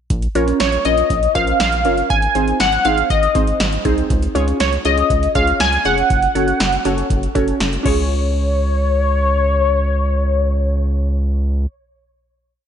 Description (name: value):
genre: synth-pop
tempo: 120 BPM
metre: 4/4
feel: straight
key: Db major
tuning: A4 = 441 Hz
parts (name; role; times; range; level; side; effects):
- rubbery square bass; bass; 0.1-11.7 s; F1 to Db2; -19 LUFS; equal; none
- electro analog drum machine; drums; 0.1-8.0 s; crash cymbal, hi-hat, kick drum, snare drum; -21 LUFS; equal; gated reverb
- warbly dusty pluck; accompaniment; 0.4-11.7 s; C4 to Db5; -21 LUFS; right 1 dB; chorus, phaser
- funky polysynth comp; melody; 0.6-11.7 s; Db5 to Ab5; -18 LUFS; left 1 dB; chorus, slapback echo
room: light reverb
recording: nothing above 10.5 kHz, faint mains hum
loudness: -14 LUFS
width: side -8 dB against mid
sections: 0.1-8.1 bridge; 8.1-12.1 final hit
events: none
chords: 0.1 Bbm; 2.1 Ab; 4.1 Db; 6.1 Gbm; 7.9 Db